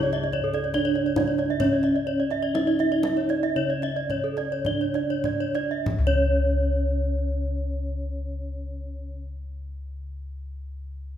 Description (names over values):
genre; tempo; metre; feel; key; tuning
Balinese gamelan; 47-76 BPM; 4/4; straight; unclear; A4 = 440 Hz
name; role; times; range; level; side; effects
gamelan-type bronze metallophone; melody; 0.0-9.2 s; C#4 to E4-50c; -28 LUFS; right 3 dB; none
gamelan-type bronze metallophone; arpeggios; 0.0-9.2 s; C#5 to E5-50c; -30 LUFS; left 4 dB; none
gamelan-type bronze metallophone; arpeggios; 0.0-9.2 s; A4-40c to E5-50c; -30 LUFS; right 6 dB; none
gamelan-type bossed gongs; bass; 0.0-9.1 s; C#2 to G#4-45c; -28 LUFS; left 1 dB; none
kendang; percussion; 0.1-6.5 s; none; -33 LUFS; left 1 dB; none
room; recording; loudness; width
wet recital hall reverb, RT60 1.6 s; minimal, uncompressed stereo recording; -22 LUFS; side -10 dB against mid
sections
0.0-5.9 A section; 5.9-10.9 B section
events
slowing down 0.0-5.9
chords
none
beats
0.75 | 1.62 2.55 3.56 4.67 | 5.88 7.14 8.41